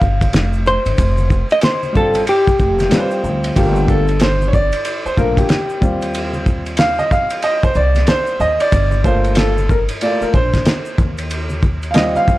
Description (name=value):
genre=hip hop, jazz-hop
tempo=93 BPM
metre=4/4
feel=swing 62% on 16ths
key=G minor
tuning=A4 = 440 Hz
part: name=hollow-body jazz guitar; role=melody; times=0.0-3.2 s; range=G4 to F5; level=-17 LUFS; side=equal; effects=none
part: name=upright bass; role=bass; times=0.0-12.2 s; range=F1 to Eb2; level=-19 LUFS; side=equal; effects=transformer saturation
part: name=cloth-damped thuddy drum kit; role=drums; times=0.0-12.4 s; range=hi-hat, kick drum, ride cymbal, snare drum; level=-18 LUFS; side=equal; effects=none
part: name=tube shaker and congas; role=percussion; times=0.0-12.4 s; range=none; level=-29 LUFS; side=equal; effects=none
part: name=warm grand piano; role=accompaniment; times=1.9-12.4 s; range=G3 to F5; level=-17 LUFS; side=equal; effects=none
room=small room ambience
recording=dry, gritty hardware recording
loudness=-13 LUFS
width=side -17 dB against mid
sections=0.0-3.6 A section; 3.6-12.4 B section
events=grand piano solo 3.6-12.4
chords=0.3 Fsus2; 3.6 Gm9; 5.8 Eb69; 8.7 Gm9; 11.0 Eb69